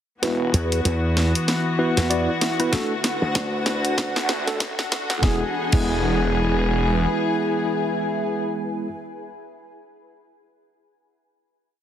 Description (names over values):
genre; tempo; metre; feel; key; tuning
glitch hop; 96 BPM; 4/4; swing 59% on 16ths; unclear; A4 = 439 Hz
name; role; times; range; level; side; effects
dark studio string section; sustained chords; 0.2-8.4 s; D3 to G#4; -27 LUFS; left 3 dB; vintage 12-bit sampler grit, sidechain pumping
tine electric piano; stabs; 0.2-8.9 s; G#3 to D5; -25 LUFS; right 1 dB; medium stereo tremolo, sidechain pumping, low-pass filter, digital delay
phased detuned saw bass; bass; 0.2-7.1 s; E1 to D2; -25 LUFS; equal; phaser, tube saturation, high-pass filter
drum and bass drum kit; drums; 0.2-5.9 s; crash cymbal, hi-hat, rim click, snare drum; -26 LUFS; equal; studio ambience
granular cloud pad; texture; 1.3-8.5 s; D4 to G#5; -28 LUFS; equal; built-in reverb, sidechain pumping
slap bass with an envelope filter; bass; 0.5-4.1 s; D2 to E2; -22 LUFS; equal; none
electronic kick drum; drums; 2.7-5.9 s; none; -21 LUFS; equal; studio ambience
room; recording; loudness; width
light reverb, digital ambience; heavily compressed radio sound, high-pass filter; -20 LUFS; side -10 dB against mid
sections
0.2-5.2 build; 5.2-7.7 final chord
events
build-up 0.2-5.2; drum fill 0.2-5.2; filter sweep on tine electric piano 0.2-5.2; filter sweep 0.2-5.2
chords
0.2 Esus2; 2.7 D; 5.2 E